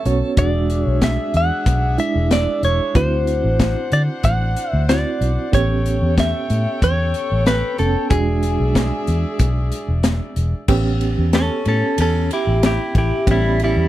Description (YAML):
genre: straight-eighth soul blues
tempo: 93 BPM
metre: 4/4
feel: straight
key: unclear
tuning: A4 = 440 Hz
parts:
  - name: barky reed electric piano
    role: accompaniment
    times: 0.0-13.9 s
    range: G#3 to C#5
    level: -25 LUFS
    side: right 5 dB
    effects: overdrive, fast tremolo
  - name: bright horn section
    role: sustained chords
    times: 0.0-10.7 s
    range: D4 to A5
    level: -31 LUFS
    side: left 2 dB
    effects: none
  - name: vintage muted fingered electric bass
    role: bass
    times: 0.1-13.9 s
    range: E1 to D3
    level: -19 LUFS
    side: equal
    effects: none
  - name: tight funk drum kit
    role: drums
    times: 0.1-13.8 s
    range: crash cymbal, hi-hat, kick drum, ride cymbal, snare drum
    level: -21 LUFS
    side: left 1 dB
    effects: none
  - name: direct-recorded clean electric guitar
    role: melody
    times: 0.4-13.9 s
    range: G3 to F#5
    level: -21 LUFS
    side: equal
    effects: phaser
room: little or no reverb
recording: none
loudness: -16 LUFS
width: side -14 dB against mid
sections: 0.0-10.7 A section; 10.7-13.9 B section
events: reed electric piano fill 0.0-0.4; clean electric guitar solo 10.7-13.9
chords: 0.4 E7; 3.0 D7; 5.5 A7; 8.1 E7; 10.7 A7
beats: | 0.37 1.02 1.66 2.31 | 2.95 3.59 4.24 4.88 | 5.53 6.17 6.82 7.46 | 8.11 8.75 9.40 10.04 | 10.69 11.34 11.98 12.63 | 13.27